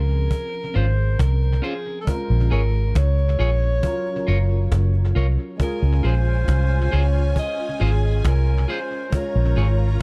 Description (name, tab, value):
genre	lovers rock reggae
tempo	68 BPM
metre	4/4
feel	straight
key	Db major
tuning	A4 = 440 Hz
part	warm alto saxophone	melody	0.0-10.0 s	Ab4 to Eb5	-31 LUFS	equal	tape echo
part	barky tine electric piano	accompaniment	0.0-10.0 s	F3 to Bb4	-34 LUFS	equal	overdrive, ensemble chorus, tape echo
part	vintage muted fingered electric bass	bass	0.0-10.0 s	Gb1 to Db2	-20 LUFS	equal	none
part	cajon	drums	0.3-9.9 s	none	-28 LUFS	equal	tape echo
part	clean electric guitar	stabs	0.7-9.7 s	Db4 to Db5	-34 LUFS	equal	none
part	warm studio string section	second line	5.6-10.0 s	Db4 to Bb5	-35 LUFS	equal	none
room	small room ambience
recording	dark, warm production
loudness	-21 LUFS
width	mono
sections	0.0-10.0 A section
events	none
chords	0.0 Dbmaj7; 2.1 Bbm7; 3.8 Gbmaj7; 5.6 Dbmaj7; 9.1 Bbm7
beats	0.31 1.19 | 2.07 2.95 3.83 4.71 | 5.59 6.48 7.36 8.24 | 9.12 10.00